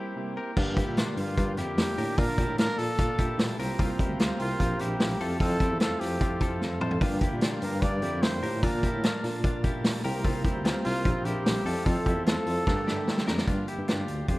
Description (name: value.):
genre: jangly indie pop.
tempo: 149 BPM.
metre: 4/4.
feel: straight.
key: G dorian.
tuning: A4 = 440 Hz.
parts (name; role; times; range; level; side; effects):
combo organ; accompaniment; 0.0-13.5 s; Bb3 to A5; -36 LUFS; right 2 dB; none.
mellow electric guitar; accompaniment; 0.0-14.4 s; G2 to A4; -37 LUFS; right 2 dB; none.
direct-recorded clean electric guitar; arpeggios; 0.0-14.4 s; C4 to C5; -37 LUFS; left 4 dB; none.
barky tine electric piano; bass; 0.6-14.4 s; Bb1 to Bb2; -31 LUFS; equal; overdrive, medium tremolo.
vintage drum kit; drums; 0.6-14.4 s; crash cymbal, hi-hat, kick drum, snare drum, toms; -28 LUFS; equal; none.
breathy trumpet; melody; 1.2-14.4 s; F4 to D5; -32 LUFS; equal; none.
room: light reverb, studio reverb.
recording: rough home demo mix.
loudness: -25 LUFS.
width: side -19 dB against mid.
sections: 0.6-13.5 A section.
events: break 0.0-0.6; drum fill 6.6-7.0, 12.7-13.5.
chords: 0.0 C7; 0.6 Gm7; 2.2 Bbmaj7; 3.6 C7sus4; 5.2 Fmaj7; 7.0 Gm7; 8.6 Bbmaj7; 10.0 C7sus4; 11.7 Fmaj7; 12.7 Gmadd9; 13.5 Gm7.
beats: 0.16 | 0.57 0.97 1.37 1.78 | 2.18 2.58 2.98 3.39 | 3.79 4.19 4.60 5.00 | 5.40 5.81 6.21 6.61 | 7.02 7.42 7.82 8.23 | 8.63 9.03 9.44 9.84 | 10.24 10.65 11.05 11.46 | 11.86 12.26 12.67 13.07 | 13.47 13.88 14.28.